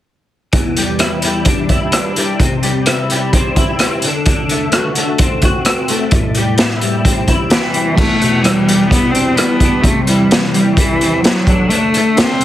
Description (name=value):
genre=quiet-loud alternative rock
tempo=129 BPM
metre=4/4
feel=straight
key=E minor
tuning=A4 = 440 Hz
part: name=twelve-string electric guitar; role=arpeggios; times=0.5-12.4 s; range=E2 to F#4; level=-17 LUFS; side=left 2 dB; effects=ensemble chorus
part: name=raw garage drum kit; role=drums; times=0.5-12.4 s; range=crash cymbal, hi-hat, kick drum, rim click, snare drum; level=-14 LUFS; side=equal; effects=none
part: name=warm cello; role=melody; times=7.5-12.4 s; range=E3 to C4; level=-14 LUFS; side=equal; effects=slapback echo
room=light reverb, small room ambience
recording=heavily compressed radio sound, multiband compression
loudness=-11 LUFS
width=side -12 dB against mid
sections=0.5-8.0 A section; 8.0-12.4 B section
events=none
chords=0.5 Em7; 2.4 C; 4.0 D7; 6.1 Am7; 8.0 Em7; 9.8 C; 11.5 D5